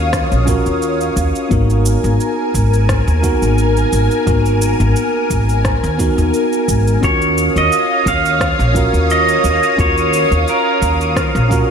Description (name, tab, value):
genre	sunset chillout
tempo	87 BPM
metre	4/4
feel	swing 54% on 16ths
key	Eb minor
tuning	A4 = 441 Hz
part	bright tine electric piano	accompaniment	0.0-11.7 s	Cb4 to Bb4	-19 LUFS	moving between left 1 dB and right 5 dB	auto-pan, low-pass filter, diffuse ambient delay
part	lush unison pad	sustained chords	0.0-11.7 s	Bb4 to Eb6	-20 LUFS	left 1 dB	chorus, phaser
part	upright bass	bass	0.0-11.6 s	Ab1 to Eb2	-16 LUFS	equal	none
part	electronic kick drum	drums	0.1-11.7 s	none	-20 LUFS	equal	none
part	electronic rim click and cabasa	drums	0.1-11.7 s	none	-26 LUFS	equal	none
part	pedal steel guitar	melody	7.0-11.7 s	Bb4 to F5	-16 LUFS	right 1 dB	vintage 12-bit sampler grit, diffuse ambient delay
room	moderate lush hall reverb, RT60 1.7 s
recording	dreamy mix soaked in reverb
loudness	-12 LUFS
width	side -7 dB against mid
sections	0.0-11.7 A section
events	none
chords	0.0 Ebm9; 1.5 Abm9; 7.0 Ebm9